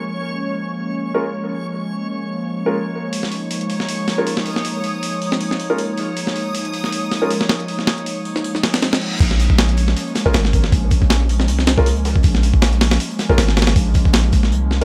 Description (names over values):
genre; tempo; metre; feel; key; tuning
drum and bass, jungle; 158 BPM; 4/4; swing 55% on 16ths; Bb minor; A4 = 440 Hz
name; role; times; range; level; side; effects
airy breathy pad; sustained chords; 0.0-14.8 s; F3 to Eb4; -27 LUFS; equal; chorus
backwards swelling texture; texture; 0.0-9.2 s; Db5 to Eb6; -31 LUFS; equal; built-in reverb
warm grand piano; stabs; 1.1-7.3, 10.3-14.8 s; Ab3 to Bb4; -25 LUFS; equal; dub echo
breakbeat sampler-style drum kit; drums; 3.1-14.8 s; crash cymbal, hi-hat, kick drum, snare drum; -20 LUFS; equal; none
reverse cymbal; sound effects; 8.6-9.2 s; none; -32 LUFS; equal; none
long sustained 808-style bass; bass; 9.2-14.8 s; Ab1 to Db2; -19 LUFS; equal; none
crunchy breakbeat drum kit; drums; 9.2-14.6 s; hi-hat, snare drum; -36 LUFS; equal; none
room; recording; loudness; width
light reverb, studio ambience; none; -18 LUFS; mono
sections
0.0-9.2 A section; 9.2-14.8 B section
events
reverse cymbal 8.6-9.2; drop 9.2-14.8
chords
0.0 Bbm7